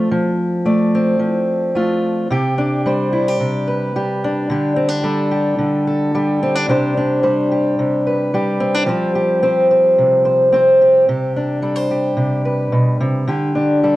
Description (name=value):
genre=folk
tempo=109 BPM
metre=4/4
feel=straight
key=unclear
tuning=A4 = 440 Hz
part: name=fingerpicked steel-string acoustic guitar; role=solo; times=0.0-14.0 s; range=B2 to D5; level=-14 LUFS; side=equal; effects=none
room=light reverb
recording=worn, warbling old tape, cassette tape, warbly pitch drift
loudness=-14 LUFS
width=side -16 dB against mid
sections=0.0-2.3 A section; 2.3-14.0 B section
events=none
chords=0.0 Dm7/F; 2.3 Csus2; 4.5 Gsus2/D; 6.7 Csus2; 8.9 Fsus2; 11.1 Csus2; 13.3 Gsus2/D